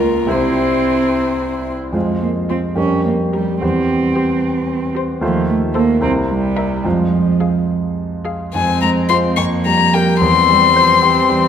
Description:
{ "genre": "quick classical-period movement for piano quartet", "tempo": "69-76 BPM (dotted quarters)", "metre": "6/8", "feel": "rubato", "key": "F minor", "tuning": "A4 = 440 Hz", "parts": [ { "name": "warm violin", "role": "melody", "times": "0.0-11.5 s", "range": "Bb4 to Db6", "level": "-16 LUFS", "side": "left 8 dB", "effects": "none" }, { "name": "dark cello", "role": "second line", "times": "0.0-11.5 s", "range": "E3 to Db4", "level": "-19 LUFS", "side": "right 4 dB", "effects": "none" }, { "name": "clear concert grand piano", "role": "accompaniment", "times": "0.0-11.5 s", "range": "C2 to C5", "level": "-18 LUFS", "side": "equal", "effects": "none" }, { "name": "warm viola", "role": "accompaniment", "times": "0.0-11.5 s", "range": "Bb3 to Bb4", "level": "-24 LUFS", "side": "right 2 dB", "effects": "none" } ], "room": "wet concert hall reverb, RT60 2.0 s", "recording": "none", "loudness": "-13 LUFS", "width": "side -8 dB against mid", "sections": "0.0-8.5 A section; 8.5-11.5 B section", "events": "none", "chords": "0.3 C; 1.9 Fm; 2.8 Bbm6/F; 3.6 C/E; 5.2 F7/Eb; 6.0 C7; 6.8 Fm; 9.4 Bb5/F; 10.2 C/E" }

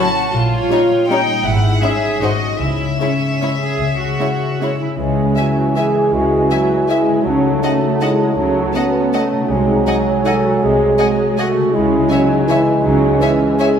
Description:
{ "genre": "classical, orchestral ballroom waltz", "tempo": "142-174 BPM", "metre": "3/4", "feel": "rubato", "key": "C# minor", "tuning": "A4 = 440 Hz", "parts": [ { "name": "warm symphonic violin section", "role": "melody", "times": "0.0-13.7 s", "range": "C#5 to A5", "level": "-23 LUFS", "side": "left 3 dB", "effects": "none" }, { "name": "warm symphonic violin section", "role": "second line", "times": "0.0-13.7 s", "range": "D#4 to F#5", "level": "-24 LUFS", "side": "left 1 dB", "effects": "none" }, { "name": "dark symphonic viola section", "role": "accompaniment", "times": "0.0-13.8 s", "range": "E3 to D#4", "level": "-21 LUFS", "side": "right 2 dB", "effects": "none" }, { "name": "concert harp", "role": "arpeggios", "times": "0.0-13.8 s", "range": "G#2 to G#4", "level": "-22 LUFS", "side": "left 5 dB", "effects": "none" }, { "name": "warm symphonic cello section", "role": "bass", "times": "0.0-13.1 s", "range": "B#2 to G#4", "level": "-22 LUFS", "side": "right 2 dB", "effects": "none" }, { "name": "warm symphonic double bass section", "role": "bass", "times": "0.3-13.1 s", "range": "G#1 to C#2", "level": "-24 LUFS", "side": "right 2 dB", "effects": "none" }, { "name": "mellow hollow concert flute", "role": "second line", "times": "5.0-13.8 s", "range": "G#5 to A5", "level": "-24 LUFS", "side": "equal", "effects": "none" }, { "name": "mellow bassoon", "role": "accompaniment", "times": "5.0-13.8 s", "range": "E3 to G#3", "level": "-22 LUFS", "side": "right 3 dB", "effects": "none" }, { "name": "mellow French horn section", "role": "sustained chords", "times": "5.0-13.8 s", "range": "G#3 to F#4", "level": "-22 LUFS", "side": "left 1 dB", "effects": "none" }, { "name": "dark clarinet", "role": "second line", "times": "5.2-13.8 s", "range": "C#4 to A4", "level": "-19 LUFS", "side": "equal", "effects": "none" } ], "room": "wet scoring stage reverb, RT60 1.8 s", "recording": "minimal, uncompressed stereo recording", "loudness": "-13 LUFS", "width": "side -8 dB against mid", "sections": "0.0-5.0 A section; 5.0-13.8 A section", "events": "none", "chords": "0.3 D#7/A#; 1.5 C#m/G#; 2.2 G#7; 2.6 C#m; 7.3 D#m7b5/C#; 9.5 G#7/B#; 11.7 C#m" }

